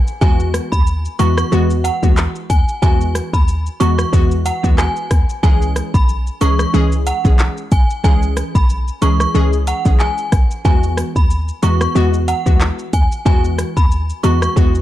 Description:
dancehall; 92 BPM; 4/4; swing 56% on 16ths; A4 = 440 Hz
synth chime; melody; 0.0-14.5 s; F#5 to C#6; -22 LUFS; right 2 dB; ensemble chorus, ping-pong delay
short 808-style bass; bass; 0.0-14.8 s; B1 to E2; -16 LUFS; equal
afro-pop drum kit; drums; 0.1-14.8 s; handclaps, hi-hat, kick drum, rim click, shaker; -16 LUFS; equal; vintage 12-bit sampler grit
glassy wavetable pluck; accompaniment; 0.2-14.8 s; E3 to G#4; -20 LUFS; left 1 dB; chorus
woodblock and cabasa; percussion; 0.2-14.4 s; -32 LUFS; left 4 dB
digital ambience; dark, warm production; -13 LUFS; side -14 dB against mid
0.0-14.8 A section
0.2 Eadd9; 5.4 C#m; 10.7 Eadd9

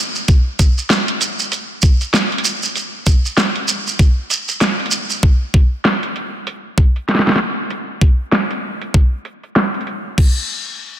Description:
glitch hop; 97 BPM; 4/4; swing 59% on 16ths
shekere; percussion; 0.2-5.2 s; -20 LUFS; right 4 dB
dubstep drum kit; drums; 0.3-10.3 s; crash cymbal, hi-hat, snare drum; -18 LUFS; equal; low-pass filter on snare, low-pass filter on hats, low-pass filter on cymbals
electronic kick drum; drums; 0.3-10.3 s; -11 LUFS; equal
light reverb; dense, heavily limited modern master; -14 LUFS; side -11 dB against mid
0.0-10.2 A section
filter sweep on drum 0.0-10.2

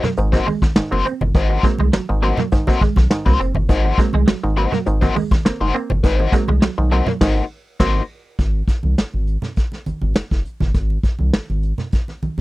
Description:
funk; 102 BPM; 4/4; straight; Ab mixolydian; A4 = 439 Hz
crunchy overdriven guitar; accompaniment; 0.0-8.0 s; Bb3 to C5; -22 LUFS; left 6 dB; wah, harmonic tremolo
electric guitar at the edge of break-up; riff; 0.0-7.2 s; Gb3 to C4; -24 LUFS; right 8 dB; ensemble chorus
muted clav; stabs; 0.0-8.0 s; Ab2 to C4; -24 LUFS; right 2 dB; overdrive
vintage brush drum kit; drums; 0.0-12.4 s; crash cymbal, hi-hat, kick drum, snare drum; -17 LUFS; equal
congas; percussion; 0.0-12.4 s; -26 LUFS; right 2 dB
round analog bass; bass; 0.2-12.4 s; Gb1 to C2; -19 LUFS; equal
little or no reverb; dry, close 1970s-style studio recording; -16 LUFS; side -18 dB against mid
0.0-8.4 A section; 8.4-12.4 B section
band accent 7.2-8.4
0.0 Ab9; 8.4 N.C.

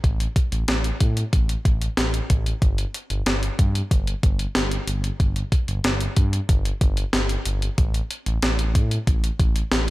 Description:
1980s-style pop; 93 BPM; 4/4; straight; A4 = 441 Hz
smooth gliding synth bass; bass; 0.0-9.9 s; G1 to A2; -24 LUFS; equal
clean 12-bit digital drum machine; drums; 0.0-9.9 s; hi-hat, kick drum, snare drum; -21 LUFS; equal; gated reverb
little or no reverb; -20 LUFS; side -18 dB against mid
0.0-9.9 A section

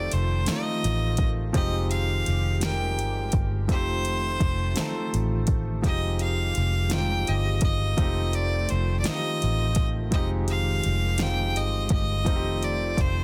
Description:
slow six-eight R&B; 56 BPM (dotted quarters); 6/8; straight; A4 = 440 Hz
clear fiddle; melody; 0.0-13.2 s; C5 to G5; -32 LUFS; equal; tape echo
warm grand piano; accompaniment; 0.0-13.2 s; F3 to Bb4; -34 LUFS; equal
hollow soft pad; sustained chords; 0.0-13.2 s; Eb3 to G4; -39 LUFS; equal; ensemble chorus
vintage muted fingered electric bass; bass; 0.0-13.2 s; F1 to A1; -28 LUFS; equal
smooth R&B drum kit; drums; 0.1-13.1 s; hi-hat, kick drum, snare drum; -30 LUFS; equal
little or no reverb; dense, heavily limited modern master; -25 LUFS; mono
0.0-5.8 A section; 5.8-13.2 A section
0.0 F7; 1.5 Fm9; 3.7 F7; 5.8 Fm9; 8.0 F7; 10.1 Fm9; 12.3 F7

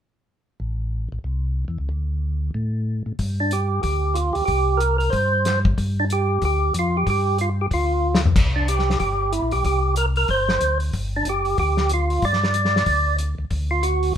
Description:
soul jazz organ trio; 186 BPM; 4/4; swing 61% on 8ths; A4 = 440 Hz
mellow tonewheel organ; bass; 0.6-14.1 s; F#1 to A2; -23 LUFS; equal; slow rotary speaker
warm soul drum kit; drums; 3.2-14.1 s; crash cymbal, hi-hat, kick drum, snare drum, toms; -24 LUFS; left 2 dB
percussive tonewheel organ; melody; 3.4-14.1 s; D4 to D5; -21 LUFS; right 1 dB; slow rotary speaker, overdrive
light reverb; minimal, uncompressed stereo recording; -19 LUFS; side -9 dB against mid
0.6-3.2 A section; 3.2-14.2 B section
drum fill 8.0-8.4
0.6 Am; 1.9 D5; 3.2 G5; 4.5 C5; 5.8 G5; 8.4 Csus2; 10.9 G5; 13.5 D

